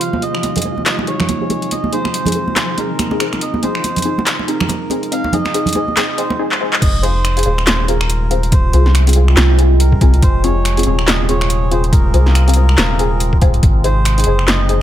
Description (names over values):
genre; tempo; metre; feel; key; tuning
deep dubstep; 141 BPM; 4/4; swing 58% on 16ths, half-time; F minor; A4 = 438 Hz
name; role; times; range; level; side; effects
melodica; melody; 0.0-14.8 s; Bb4 to F5; -23 LUFS; right 2 dB; low-pass filter, dub echo
overtone-sweeping drone; sustained chords; 0.0-14.8 s; C3 to F4; -23 LUFS; right 2 dB; chorus, built-in reverb, vintage 12-bit sampler grit
deep house drum kit; drums; 0.0-14.8 s; crash cymbal, finger snaps, handclaps, hi-hat, snare drum; -18 LUFS; equal; overdrive, high-pass filter on hats, high-pass filter on snare, high-pass filter on cymbals, high-pass filter on room
flickering grainy texture; texture; 0.0-6.4 s; F3 to F4; -28 LUFS; left 2 dB; built-in reverb
congas; percussion; 0.1-6.4 s; none; -21 LUFS; right 3 dB; none
filtered dub chord stab; stabs; 0.2-14.8 s; C4 to Ab4; -22 LUFS; left 3 dB; phaser, lush chorus, vintage 12-bit sampler grit, dub echo
soft dub sub bass; bass; 6.8-14.8 s; Eb1 to C2; -13 LUFS; equal; none
electronic kick drum; drums; 6.8-13.7 s; none; -13 LUFS; equal; overdrive
room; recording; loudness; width
light reverb; none; -12 LUFS; side -12 dB against mid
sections
0.0-6.8 A section; 6.8-14.8 B section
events
build-up 0.0-6.8; filter sweep on synth stab 0.0-6.8; drum fill 6.5-6.8; drop 6.8-14.8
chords
0.0 Ab; 6.8 Fm; 13.6 Ab